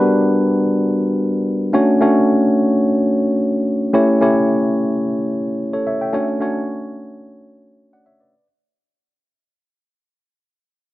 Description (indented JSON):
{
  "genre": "disco",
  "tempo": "free time",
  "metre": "none",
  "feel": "none",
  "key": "D major",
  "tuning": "A4 = 441 Hz",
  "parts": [
    { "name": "tine electric piano", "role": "solo", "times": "0.0-8.5 s", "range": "G3 to G5", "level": "-15 LUFS", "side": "equal", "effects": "none" }
  ],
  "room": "light reverb, digital ambience",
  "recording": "none",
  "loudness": "-15 LUFS",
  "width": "side -16 dB against mid",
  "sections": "0.0-3.9 A section; 3.9-8.3 B section",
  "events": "fade-out 3.9-8.3",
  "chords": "0.0 Gmaj7; 1.7 Dmaj7; 3.9 A7; 6.1 Dmaj7"
}